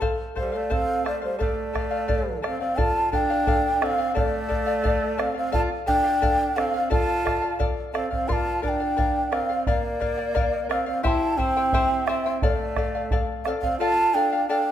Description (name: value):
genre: andean folk, Andean ensemble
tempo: 87 BPM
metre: 2/4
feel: straight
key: D minor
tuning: A4 = 440 Hz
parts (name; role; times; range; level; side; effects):
- charango; accompaniment; 0.0-14.7 s; E4 to G5; -28 LUFS; left 4 dB; none
- bombo; percussion; 0.0-13.8 s; none; -28 LUFS; right 1 dB; none
- breathy mellow large quena; melody; 0.4-14.7 s; C5 to C6; -25 LUFS; equal; none
- warm alto saxophone; second line; 0.4-14.7 s; G3 to F4; -29 LUFS; right 2 dB; none
room: moderate scoring stage reverb, RT60 1.6 s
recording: minimal, uncompressed stereo recording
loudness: -21 LUFS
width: side -10 dB against mid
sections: 0.0-2.8 A section; 2.8-13.8 B section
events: none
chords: 0.0 F; 1.4 Dm; 8.3 Bb; 11.0 C; 12.4 Dm